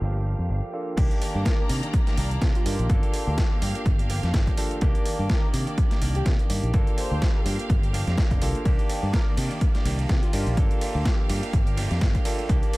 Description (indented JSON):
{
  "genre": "filtered disco house",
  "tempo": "125 BPM",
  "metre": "4/4",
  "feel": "swing 56% on 16ths",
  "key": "C dorian",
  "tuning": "A4 = 439 Hz",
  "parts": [
    { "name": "barky tine electric piano", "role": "accompaniment", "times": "0.0-12.8 s", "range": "Eb3 to A4", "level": "-32 LUFS", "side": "equal", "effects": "phaser, sidechain pumping, low-pass filter, analog delay" },
    { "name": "bright studio string section", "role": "sustained chords", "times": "0.0-12.8 s", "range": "Eb3 to Bb5", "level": "-39 LUFS", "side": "right 1 dB", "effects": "sidechain pumping, low-pass filter" },
    { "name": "direct-recorded clean electric guitar", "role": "riff", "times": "0.0-12.8 s", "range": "Eb3 to G4", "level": "-36 LUFS", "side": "right 2 dB", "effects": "sidechain pumping, low-pass filter, analog delay" },
    { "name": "fingered electric bass", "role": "bass", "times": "0.0-12.6 s", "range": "F1 to C3", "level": "-26 LUFS", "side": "equal", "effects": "tube saturation, sidechain pumping, low-pass filter" },
    { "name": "dusty soul sampler-style drum kit", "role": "drums", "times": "1.0-12.8 s", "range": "crash cymbal, hi-hat, ride cymbal, snare drum", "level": "-33 LUFS", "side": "right 1 dB", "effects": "overdrive, sidechain pumping on hats, sidechain pumping on cymbals, analog delay" },
    { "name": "electronic kick drum", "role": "drums", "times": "1.0-12.6 s", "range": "none", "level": "-23 LUFS", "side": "equal", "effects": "overdrive" },
    { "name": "analog synth brass", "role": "melody", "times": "1.5-10.6 s", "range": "F4 to C5", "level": "-39 LUFS", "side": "equal", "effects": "chorus, sidechain pumping, low-pass filter, analog delay" }
  ],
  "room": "digital ambience",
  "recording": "echo-heavy mix",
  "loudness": "-21 LUFS",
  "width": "side -21 dB against mid",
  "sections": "1.0-12.8 A section",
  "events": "drop 1.0-12.8",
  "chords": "0.0 Gm7; 1.0 Cm9; 2.9 Gm7; 4.8 Cm9; 6.7 Gm7; 8.7 Cm9; 10.6 Gm7",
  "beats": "0.02 0.50 | 0.98 1.46 1.94 2.42 | 2.90 3.38 3.86 4.34 | 4.82 5.30 5.78 6.26 | 6.74 7.22 7.70 8.18 | 8.66 9.14 9.62 10.10 | 10.58 11.06 11.54 12.02 | 12.50"
}